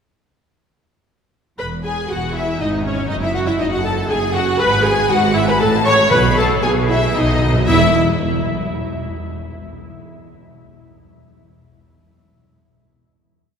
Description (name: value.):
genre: quick classical-period movement for symphony orchestra.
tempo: 118 BPM.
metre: 3/4.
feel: straight.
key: E major.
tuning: A4 = 440 Hz.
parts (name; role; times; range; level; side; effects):
rich studio violin section; melody; 1.6-8.0 s; C#5 to C#6; -24 LUFS; left 2 dB; none.
clear studio violin section; second line; 1.6-8.0 s; C#5 to C#6; -24 LUFS; left 3 dB; none.
rich studio viola section; accompaniment; 1.6-8.0 s; C#4 to C#5; -18 LUFS; equal; none.
rich studio cello section; bass; 1.6-8.0 s; E2 to B2; -23 LUFS; right 2 dB; none.
rich studio double bass section; bass; 1.6-8.0 s; E1 to B1; -24 LUFS; right 2 dB; none.
timpani; percussion; 6.1-7.9 s; E2 to B2; -23 LUFS; left 1 dB; none.
room: wet cathedral reverb, RT60 5.1 s.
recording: recorded in a church or concert hall.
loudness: -14 LUFS.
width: side -7 dB against mid.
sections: 1.6-7.7 A section; 7.7-9.2 final note.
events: timpani fill 7.2-7.7.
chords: 1.6 Eadd9; 2.6 G#sus4; 3.1 F#m13; 4.6 G#m7; 5.6 A; 6.1 B; 7.7 N.C..